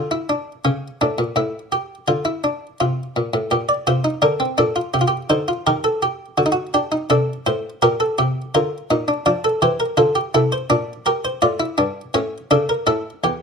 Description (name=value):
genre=classical, baroque-style 3-part fugue for harpsichord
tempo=83 BPM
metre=4/4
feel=straight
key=G minor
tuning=A4 = 438 Hz
part: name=buff-stop harpsichord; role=solo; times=0.0-13.4 s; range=E2 to D5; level=-17 LUFS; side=equal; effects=none
room=light reverb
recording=close, detailed microphones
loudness=-18 LUFS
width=side -5 dB against mid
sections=0.0-13.4 A section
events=none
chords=0.0 E7(no3); 0.7 A7; 2.1 Dm; 3.5 Gm/Bb; 5.0 Am7b5/C; 6.4 D7(no3); 7.8 Gm/Bb; 9.3 Dm; 10.7 Em7b5/Bb; 12.2 A7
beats=| 0.65 1.37 2.08 2.80 | 3.52 4.23 4.95 5.67 | 6.39 7.11 7.83 8.55 | 9.27 9.99 10.71 11.43 | 12.15 12.88